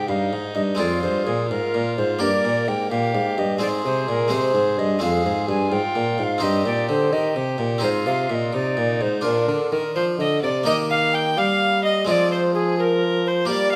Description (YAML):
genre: classical, renaissance-style consort dance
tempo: 85 BPM (dotted quarters)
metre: 6/8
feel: straight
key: unclear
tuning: A4 = 440 Hz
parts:
  - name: tenor recorder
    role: melody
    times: 0.0-13.8 s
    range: Ab4 to Ab5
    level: -26 LUFS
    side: equal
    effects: none
  - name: warm violin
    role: second line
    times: 0.0-13.8 s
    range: D4 to G5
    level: -29 LUFS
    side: equal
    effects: none
  - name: harpsichord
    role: accompaniment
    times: 0.0-13.8 s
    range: F2 to C5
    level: -27 LUFS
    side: equal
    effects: none
  - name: dark bassoon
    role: bass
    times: 0.0-13.8 s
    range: F2 to G3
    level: -27 LUFS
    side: equal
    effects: none
room: moderate recital hall reverb, RT60 1.3 s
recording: none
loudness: -21 LUFS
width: mono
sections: 0.0-10.7 A section; 10.7-13.8 A section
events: none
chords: 0.0 Eb; 0.8 Fm; 2.2 Gm; 3.6 Ab; 5.0 Fm; 6.4 Cm/G; 7.8 Ab; 9.2 Bb; 10.7 Eb; 12.1 Fm